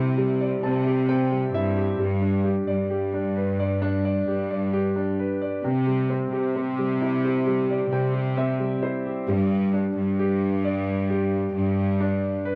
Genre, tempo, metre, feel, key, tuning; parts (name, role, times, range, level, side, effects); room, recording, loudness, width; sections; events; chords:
pop ballad; 66 BPM; 4/4; straight; A4 = 439 Hz
clear concert grand piano; accompaniment; 0.0-12.6 s; C3 to A5; -28 LUFS; equal
warm symphonic cello section; bass; 0.0-12.4 s; G2 to C3; -27 LUFS; equal
little or no reverb; dry, close 1970s-style studio recording; -24 LUFS; mono
0.0-9.3 A section; 9.3-12.6 A section
grand piano fill 0.2-2.0, 7.5-9.3
0.0 Cadd9; 2.0 G; 5.6 Cadd9; 9.3 G5